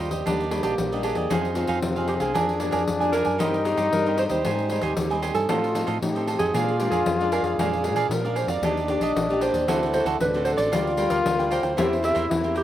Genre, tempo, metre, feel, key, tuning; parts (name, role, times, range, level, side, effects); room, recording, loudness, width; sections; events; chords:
samba and choro; 115 BPM; 4/4; straight; Eb major; A4 = 442 Hz
dark alto saxophone; melody; 0.0-12.6 s; Eb4 to E5; -27 LUFS; right 3 dB
cavaquinho; accompaniment; 0.0-12.6 s; D4 to Ab5; -29 LUFS; right 6 dB; slapback echo
nylon-string guitar; accompaniment; 0.0-12.6 s; G2 to Bb4; -30 LUFS; left 2 dB; slapback echo
modern bright fingered electric bass; bass; 0.0-12.6 s; A1 to Bb2; -31 LUFS; equal
pandeiro; percussion; 0.1-12.6 s; -29 LUFS; left 4 dB
breathy trombone; second line; 0.3-12.6 s; Bb3 to G4; -27 LUFS; left 4 dB
little or no reverb; recorded outdoors, with no room sound; -21 LUFS; side -12 dB against mid
0.3-12.6 A section
0.3 Ebmaj7; 1.3 Fm7; 2.4 Bb7/F; 3.4 Eb6/G; 4.4 Abmaj7; 5.5 F7/A; 6.5 Bb7; 8.6 Ebmaj7; 9.7 D7; 10.7 Gm7/D; 11.8 C7/E